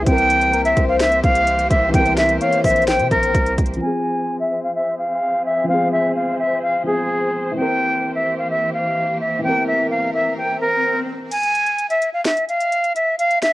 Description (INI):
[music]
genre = hip hop, trap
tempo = 128 BPM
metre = 4/4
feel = half-time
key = F harmonic minor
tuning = A4 = 437 Hz
[part]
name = breathy bright concert flute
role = melody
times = 0.0-13.5 s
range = Ab4 to Ab5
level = -18 LUFS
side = equal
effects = low-pass filter, cassette tape, analog delay
[part]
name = dark baby grand piano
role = accompaniment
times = 0.0-11.3 s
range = E3 to Bb4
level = -25 LUFS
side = left 1 dB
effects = low-pass filter
[part]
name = warm symphonic string section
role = sustained chords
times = 0.0-11.3 s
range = E3 to C5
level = -28 LUFS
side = equal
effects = low-pass filter
[part]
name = hard-hitting 808-style bass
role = bass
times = 0.0-3.8 s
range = Bb1 to C3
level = -23 LUFS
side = equal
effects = none
[part]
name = trap drum kit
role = drums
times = 0.1-3.8, 11.3-13.5 s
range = crash cymbal, finger snaps, hi-hat, kick drum, snare drum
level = -22 LUFS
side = equal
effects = none
[part]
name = warm velvety synth lead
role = second line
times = 0.5-3.8 s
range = Bb4 to Db5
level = -23 LUFS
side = left 5 dB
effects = chorus, tremolo, plate reverb, analog delay
[part]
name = swell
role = sound effects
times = 10.3-11.3 s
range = none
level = -29 LUFS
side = left 2 dB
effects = none
[sound]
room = moderate small room reverb, RT60 0.5 s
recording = home recording on cassette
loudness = -16 LUFS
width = side -17 dB against mid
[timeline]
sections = 0.0-3.8 A section; 3.8-11.3 B section; 11.3-13.5 C section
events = filter sweep 3.8-11.3; swell 10.3-11.3; kick muted 11.3-13.5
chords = 0.1 C7; 3.8 Fm; 7.6 C7; 11.3 N.C.